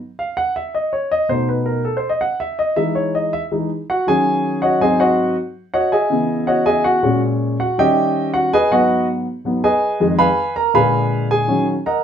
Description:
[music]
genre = jazz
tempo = 162 BPM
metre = 4/4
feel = straight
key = G# minor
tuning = A4 = 439 Hz
[part]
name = warm concert grand piano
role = solo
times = 0.2-12.0 s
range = F2 to Cb6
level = -15 LUFS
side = equal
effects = none
[sound]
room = wet club ambience, RT60 0.5 s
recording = heard from further back in the room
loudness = -15 LUFS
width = side -8 dB against mid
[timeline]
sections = 0.0-11.5 A section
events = grand piano solo 0.0-12.0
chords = 0.0 G#7(no3) (rootless); 1.1 B7; 2.6 Emaj7; 4.1 G#7sus4/D#; 4.8 G#7; 5.6 C#m11; 7.0 F#add9/A#; 7.8 D#7b9; 8.5 G#m7; 10.0 Fm7b5; 10.7 A#7b9; 11.5 D#m7

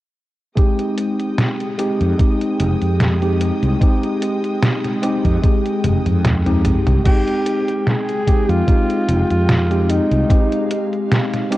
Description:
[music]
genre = vaporwave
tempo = 74 BPM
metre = 4/4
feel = swing 54% on 16ths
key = F minor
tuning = A4 = 440 Hz
[part]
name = tine electric piano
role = accompaniment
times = 0.6-11.6 s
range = Ab3 to G5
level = -20 LUFS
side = equal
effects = medium stereo tremolo, analog chorus, analog delay
[part]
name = bright symphonic string section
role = sustained chords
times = 0.6-11.6 s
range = Ab3 to Eb6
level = -30 LUFS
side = equal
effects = vintage 12-bit sampler grit
[part]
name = detuned 8-bit digital drum machine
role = drums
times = 0.6-11.6 s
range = crash cymbal, hi-hat, snare drum, toms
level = -20 LUFS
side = equal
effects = small room ambience
[part]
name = electronic kick drum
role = drums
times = 0.6-10.5 s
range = none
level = -14 LUFS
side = equal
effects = small room ambience
[part]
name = fretless electric bass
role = bass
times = 2.0-10.2 s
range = F1 to F2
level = -18 LUFS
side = equal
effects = none
[part]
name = breathy alto saxophone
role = melody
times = 7.1-11.1 s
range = Eb4 to Ab4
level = -22 LUFS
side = equal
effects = vintage 12-bit sampler grit, tape echo
[sound]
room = light reverb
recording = worn, warbling old tape, cassette tape, warbly pitch drift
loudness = -15 LUFS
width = side -16 dB against mid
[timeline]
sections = 0.6-7.1 A section; 7.1-11.6 B section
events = drum fill 5.8-7.1; kick drops out 6.2-7.1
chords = 0.6 Fm9

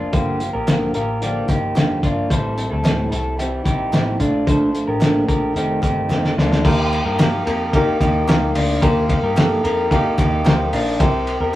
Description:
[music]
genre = jangly indie pop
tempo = 110 BPM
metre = 4/4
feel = straight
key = unclear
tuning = A4 = 436 Hz
[part]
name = fingerpicked plugged-in steel-string acoustic guitar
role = accompaniment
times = 0.0-6.7 s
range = F2 to F4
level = -22 LUFS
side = right 1 dB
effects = none
[part]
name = electric guitar through a small old amp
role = arpeggios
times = 0.0-11.6 s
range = D4 to C5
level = -23 LUFS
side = left 1 dB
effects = none
[part]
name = vintage muted picked electric bass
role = bass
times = 0.0-11.6 s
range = F1 to G2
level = -24 LUFS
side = equal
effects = tube saturation
[part]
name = cloth-damped thuddy drum kit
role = drums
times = 0.1-11.4 s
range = crash cymbal, hi-hat, kick drum, ride cymbal, snare drum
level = -19 LUFS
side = equal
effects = none
[part]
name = group handclap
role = percussion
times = 0.7-10.6 s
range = none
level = -38 LUFS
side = right 2 dB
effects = none
[part]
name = warm upright piano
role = accompaniment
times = 6.7-11.6 s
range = Bb3 to Bb5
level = -21 LUFS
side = equal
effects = none
[sound]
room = moderate studio reverb, RT60 0.6 s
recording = rough rehearsal-room recording, small room ambience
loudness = -16 LUFS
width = side -15 dB against mid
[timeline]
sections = 0.0-6.7 A section; 6.7-11.6 B section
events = drum fill 6.1-6.7; upright piano fill 10.2-11.0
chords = 0.0 Bbmaj7; 2.3 Am7; 4.2 Bbmaj7; 5.6 F7; 6.7 Eb; 11.0 C7

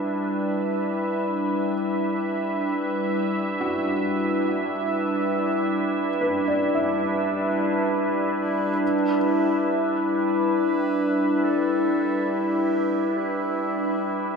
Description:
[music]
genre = ambient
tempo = free time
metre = none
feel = none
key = E minor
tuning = A4 = 440 Hz
[part]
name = evolving wavetable pad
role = sustained chords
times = 0.0-14.4 s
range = G3 to E5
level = -22 LUFS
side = equal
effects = chorus, built-in reverb
[part]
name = felt-muted upright piano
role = arpeggios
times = 0.0-14.4 s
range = E4 to E5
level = -32 LUFS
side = left 1 dB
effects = dub echo
[part]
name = clear clarinet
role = melody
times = 8.4-14.4 s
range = E4 to B4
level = -34 LUFS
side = equal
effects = dub echo
[sound]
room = wet spring reverb, RT60 2.6 s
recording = echo-heavy mix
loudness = -21 LUFS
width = side -5 dB against mid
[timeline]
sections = 0.0-8.8 A section; 8.8-14.4 B section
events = fade-in on felt piano 0.0-8.8; fade-in on clarinet 8.8-14.4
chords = 0.0 Em7

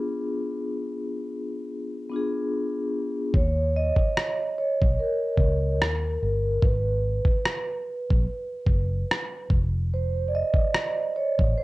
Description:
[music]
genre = lo-fi hip hop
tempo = 73 BPM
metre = 4/4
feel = swing 59% on 16ths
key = Eb minor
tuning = A4 = 439 Hz
[part]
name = vibraphone with soft mallets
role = accompaniment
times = 0.0-11.6 s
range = B3 to Eb5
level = -27 LUFS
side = right 1 dB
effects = low-pass filter
[part]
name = vintage muted fingered electric bass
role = bass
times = 3.3-11.5 s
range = F1 to Eb2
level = -25 LUFS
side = equal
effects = none
[part]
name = dusty soul sampler-style drum kit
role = drums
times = 3.3-11.5 s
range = kick drum, rim click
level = -23 LUFS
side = equal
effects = none
[sound]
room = light reverb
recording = worn, warbling old tape, cassette tape, warbly pitch drift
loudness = -23 LUFS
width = side -19 dB against mid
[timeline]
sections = 0.0-3.3 A section; 3.3-11.6 B section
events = hi-hats muted 3.3-11.6; vibraphone solo 3.3-11.6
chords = 0.0 Bdim7; 3.3 Eb5; 5.8 Eb; 6.6 Abm7; 9.5 F7(no3)

